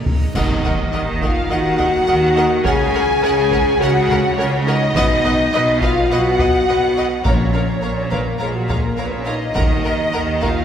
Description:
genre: cinematic, epic orchestral film score.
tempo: 104 BPM.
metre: 4/4.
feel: straight.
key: Eb minor.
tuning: A4 = 442 Hz.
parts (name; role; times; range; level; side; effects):
rich symphonic violin section; second line; 0.0-10.5 s; Bb4 to Bb5; -28 LUFS; equal; none.
rich studio viola section; accompaniment; 0.0-10.5 s; Ab4 to Eb5; -27 LUFS; right 1 dB; none.
dark French horn section; sustained chords; 0.0-10.6 s; Gb3 to Ab4; -20 LUFS; left 2 dB; none.
bright symphonic cello section; bass; 0.0-10.6 s; Bb2 to Eb3; -23 LUFS; right 2 dB; none.
rich symphonic double bass section; bass; 0.0-10.6 s; Bb1 to Eb2; -24 LUFS; right 2 dB; none.
reverse cymbal and sub drop; sound effects; 0.0-2.7 s; none; -30 LUFS; right 1 dB; none.
warm symphonic violin section; melody; 0.1-10.6 s; Gb4 to Ab5; -25 LUFS; left 1 dB; none.
mellow hollow concert flute; second line; 0.1-10.6 s; Gb4 to Ab5; -25 LUFS; equal; none.
taiko ensemble; drums; 0.1-10.6 s; none; -22 LUFS; equal; none.
clash cymbals and concert bass drum; percussion; 0.4-1.5 s; none; -26 LUFS; right 1 dB; none.
timpani; percussion; 7.3-10.4 s; Bb2 to Eb3; -25 LUFS; equal; none.
room: wet concert hall reverb, RT60 2.1 s.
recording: heard from further back in the room.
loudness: -14 LUFS.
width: side -8 dB against mid.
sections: 0.4-10.6 A section.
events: drum fill 0.0-0.4; reverse cymbal 0.0-0.4; band accent 0.4-0.9; impact 0.4-2.7.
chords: 0.4 Ebm; 2.7 Gb/Db; 5.0 B; 7.3 Bbm; 9.6 Ebm.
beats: | 0.35 0.93 1.50 2.08 | 2.65 3.23 3.81 4.38 | 4.96 5.54 6.11 6.69 | 7.26 7.84 8.41 8.99 | 9.57 10.14.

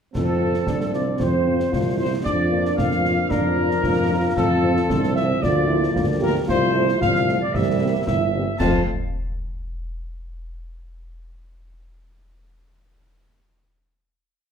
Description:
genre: military-style march for wind band.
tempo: 114 BPM.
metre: 2/4.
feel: straight.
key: F major.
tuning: A4 = 440 Hz.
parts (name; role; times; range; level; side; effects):
warm trumpet section; melody; 0.1-8.8 s; A4 to A5; -27 LUFS; equal; none.
mellow small flute group; second line; 0.1-8.9 s; A4 to F5; -27 LUFS; equal; none.
warm euphonium; second line; 0.1-8.3 s; Bb3 to G4; -26 LUFS; equal; none.
warm trombone section; sustained chords; 0.1-8.8 s; F3 to D4; -28 LUFS; right 1 dB; none.
concert snare drum, clash cymbals and concert bass drum; drums; 0.1-8.9 s; none; -27 LUFS; equal; none.
clear tuba; bass; 0.2-8.8 s; G1 to F2; -23 LUFS; right 1 dB; none.
mellow French horn section; accompaniment; 0.4-8.8 s; F3 to A4; -29 LUFS; left 3 dB; none.
room: wet large studio reverb, RT60 1.1 s.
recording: heard from further back in the room.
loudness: -18 LUFS.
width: side -7 dB against mid.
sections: 0.1-8.6 A section; 8.6-9.6 final chord.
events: none.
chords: 0.1 F; 2.3 Bb/F; 4.4 F; 5.4 Bb/D; 6.5 F/C; 7.5 C7; 8.6 F.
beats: | 0.14 0.67 | 1.20 1.72 | 2.25 2.78 | 3.31 3.84 | 4.36 4.89 | 5.42 5.95 | 6.48 7.00 | 7.53 8.06 | 8.59.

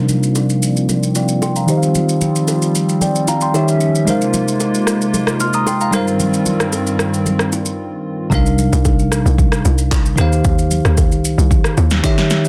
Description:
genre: amapiano.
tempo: 113 BPM.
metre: 4/4.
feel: straight.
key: unclear.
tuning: A4 = 440 Hz.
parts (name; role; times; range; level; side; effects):
bell-like tine electric piano; accompaniment; 0.0-12.5 s; C3 to F6; -19 LUFS; equal; low-pass filter.
hollow soft pad; sustained chords; 0.0-8.3 s; G2 to Fb5; -23 LUFS; equal; chorus, sidechain pumping, low-pass filter.
deep house drum kit; drums; 0.1-12.5 s; handclaps, kick drum, rim click, shaker, snare drum; -21 LUFS; equal; overdrive.
bongos and congas; percussion; 0.1-12.2 s; none; -28 LUFS; equal; none.
hollow log drum bass; bass; 8.3-12.0 s; Bb1 to Eb2; -18 LUFS; equal; none.
room: digital ambience.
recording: dense, heavily limited modern master.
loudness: -16 LUFS.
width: mono.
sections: 0.0-8.3 A section; 8.3-12.5 B section.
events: filter sweep 0.0-8.3; break 7.8-8.3.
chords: 0.0 Cm11; 1.7 Eb69; 3.5 Eb7b9; 4.1 Ab69; 5.9 Eb69/G; 8.3 Cm11; 10.2 Eb69.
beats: 0.36 0.89 1.42 | 1.95 2.48 3.01 3.54 | 4.08 4.61 5.14 5.67 | 6.20 6.73 7.26 7.79 | 8.32 8.85 9.38 9.91 | 10.45 10.98 11.51 12.04.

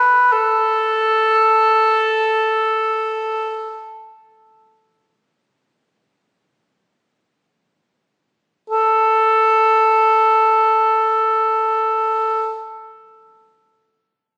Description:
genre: caucasian folk, Caucasian lament.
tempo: free time.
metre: none.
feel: none.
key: unclear.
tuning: A4 = 440 Hz.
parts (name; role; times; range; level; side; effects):
mellow cor anglais; solo; 0.0-12.6 s; A4 to B4; -16 LUFS; equal; none.
room: moderate scoring stage reverb, RT60 1.9 s.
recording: recorded on a phone in the room, studio reverb, compression.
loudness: -16 LUFS.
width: mono.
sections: 0.0-8.7 A section; 8.7-12.8 B section.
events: slowing down 0.4-8.7.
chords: none.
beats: free time.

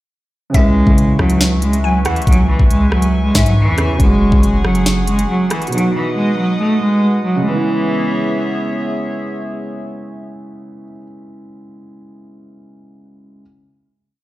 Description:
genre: hip hop, drill.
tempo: 139 BPM.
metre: 4/4.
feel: half-time.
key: C# minor.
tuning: A4 = 437 Hz.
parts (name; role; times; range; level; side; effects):
rich cello; melody; 0.5-8.7 s; E3 to A3; -16 LUFS; right 1 dB; low-pass filter, digital delay.
glassy wavetable pluck; second line; 0.5-3.6 s; E5 to G#5; -24 LUFS; left 2 dB; chorus, digital delay.
dark concert grand piano; accompaniment; 0.5-13.4 s; B2 to B4; -23 LUFS; right 1 dB; low-pass filter.
hollow soft pad; sustained chords; 0.5-10.9 s; B3 to D#6; -25 LUFS; left 1 dB; chorus.
long sustained 808-style bass; bass; 0.5-5.3 s; F#1 to C#3; -16 LUFS; equal; none.
drill drum kit; drums; 0.5-5.8 s; hi-hat, kick drum, rim click, snare drum; -15 LUFS; equal; none.
room: digital ambience.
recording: played on a big sound system in a bare room, large studio reverb.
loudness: -12 LUFS.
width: side -16 dB against mid.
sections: 0.5-7.5 hook; 7.5-10.9 final chord.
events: none.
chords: 0.5 C#m7; 4.0 F#sus2; 5.7 B; 7.5 C#m7.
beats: | 0.55 0.98 1.41 1.84 | 2.27 2.70 3.13 3.57 | 4.00 4.43 4.86 5.29 | 5.72 6.16 6.59 7.02 | 7.45 7.88 8.31 8.75 | 9.18 9.61 10.04 10.47.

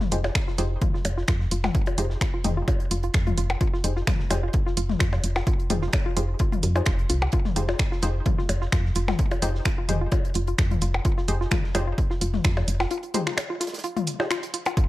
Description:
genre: minimal techno.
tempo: 129 BPM.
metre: 4/4.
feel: swing 54% on 16ths.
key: F minor.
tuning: A4 = 441 Hz.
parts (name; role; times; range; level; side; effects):
warm soul drum kit; drums; 0.0-14.9 s; hi-hat, snare drum; -41 LUFS; right 3 dB; none.
electronic toms and percussion blips; percussion; 0.0-14.7 s; none; -30 LUFS; left 4 dB; overdrive, digital delay.
hollow square pluck; riff; 0.1-14.8 s; F4 to G4; -32 LUFS; equal; chorus, vintage 12-bit sampler grit, sidechain pumping, tape echo.
filtered dub chord stab; stabs; 0.1-14.3 s; Eb4 to C5; -33 LUFS; left 1 dB; chorus, digital delay.
woody FM bass; bass; 0.1-12.9 s; F1 to F2; -26 LUFS; equal; tube saturation, sidechain pumping.
punchy analog drum machine; drums; 0.1-14.6 s; finger snaps, hi-hat; -29 LUFS; right 1 dB; none.
electronic kick drum; drums; 0.4-14.9 s; none; -25 LUFS; equal; none.
room: digital ambience.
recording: none.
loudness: -22 LUFS.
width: side -17 dB against mid.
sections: 0.0-14.8 A section.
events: break 12.9-14.8.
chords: 0.0 Fm7.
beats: 0.35 0.82 1.28 | 1.75 2.21 2.68 3.14 | 3.61 4.07 4.54 5.00 | 5.47 5.93 6.40 6.86 | 7.33 7.79 8.26 8.72 | 9.19 9.65 10.12 10.58 | 11.05 11.52 11.98 12.45 | 12.91 13.38 13.84 14.30 | 14.77.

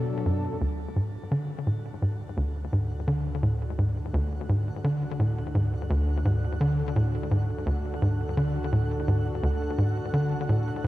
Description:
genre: ambient, sequencer-driven space music.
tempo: 85 BPM.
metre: 4/4.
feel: straight.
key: D lydian.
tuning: A4 = 440 Hz.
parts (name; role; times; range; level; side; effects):
lush unison pad; sustained chords; 0.0-10.9 s; B2 to A4; -35 LUFS; equal; chorus, cassette tape, shimmer reverb.
tight sequencer bass; riff; 0.0-10.9 s; D2 to D3; -25 LUFS; equal; cassette tape, ping-pong delay.
analog drone; bass; 2.3-10.9 s; D2; -34 LUFS; equal; chorus, phaser.
twinkling granular texture; texture; 1.3-10.9 s; F#5; -45 LUFS; right 2 dB; built-in reverb, cassette tape, shimmer reverb.
room: moderate lush hall reverb, RT60 2.4 s.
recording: home recording on cassette.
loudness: -25 LUFS.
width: side -16 dB against mid.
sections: 0.6-10.9 A section.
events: fade-in on analog synth pad 0.6-10.9; fade-in on synth texture 0.6-10.9.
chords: 0.0 Bm7; 0.6 D.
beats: | 0.61 1.31 2.02 2.73 | 3.43 4.14 4.84 5.55 | 6.25 6.96 7.67 8.37 | 9.08 9.78 10.49.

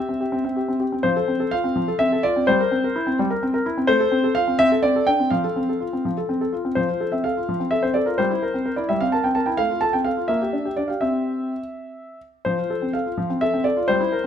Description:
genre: classical-period piano sonatina.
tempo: 84 BPM (dotted quarters).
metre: 6/8.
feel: straight.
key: F major.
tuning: A4 = 440 Hz.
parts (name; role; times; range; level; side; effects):
warm concert grand piano; solo; 0.0-14.3 s; F3 to A5; -19 LUFS; left 1 dB; none.
room: moderate large studio reverb, RT60 1.4 s.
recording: minimal, uncompressed stereo recording.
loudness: -19 LUFS.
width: side -8 dB against mid.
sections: 0.0-6.8 A section; 6.8-14.3 A section.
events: none.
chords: 0.0 C; 1.0 F; 2.5 C7/G; 3.9 F/A; 4.6 Csus2; 5.3 F; 8.2 C7/G; 9.6 F/A; 10.3 Gm/Bb; 11.0 C; 12.5 F.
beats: 0.33 | 1.05 1.76 | 2.48 3.18 | 3.88 4.59 | 5.31 6.04 | 6.77 7.48 | 8.19 8.90 | 9.60 10.30 | 11.02 11.74 | 12.46 13.18 | 13.89.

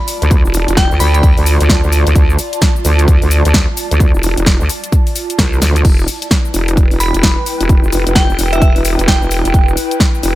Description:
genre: bass house.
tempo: 130 BPM.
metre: 4/4.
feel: swing 62% on 16ths.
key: unclear.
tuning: A4 = 440 Hz.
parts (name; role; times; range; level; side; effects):
glassy synth bell; melody; 0.0-1.2, 7.0-9.7 s; E5 to B5; -21 LUFS; right 2 dB; chorus, tape echo.
airy breathy pad; texture; 0.0-10.4 s; E4 to A5; -21 LUFS; equal; chorus, sidechain pumping.
house drum kit; drums; 0.1-10.3 s; crash cymbal, hi-hat, shaker, snare drum; -18 LUFS; left 1 dB; none.
vowel-sweep wobble bass; bass; 0.2-10.4 s; E1 to D2; -13 LUFS; equal; chorus, overdrive, sidechain pumping.
electronic kick drum; drums; 0.3-10.1 s; none; -12 LUFS; equal; none.
room: digital ambience.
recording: none.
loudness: -10 LUFS.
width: side -16 dB against mid.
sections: 0.0-10.4 A section.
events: drum fill 5.6.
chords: 0.0 Dm; 5.8 Em.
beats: | 0.31 0.77 1.23 1.69 | 2.15 2.62 3.08 3.54 | 4.00 4.46 4.92 5.39 | 5.85 6.31 6.77 7.23 | 7.69 8.15 8.62 9.08 | 9.54 10.00.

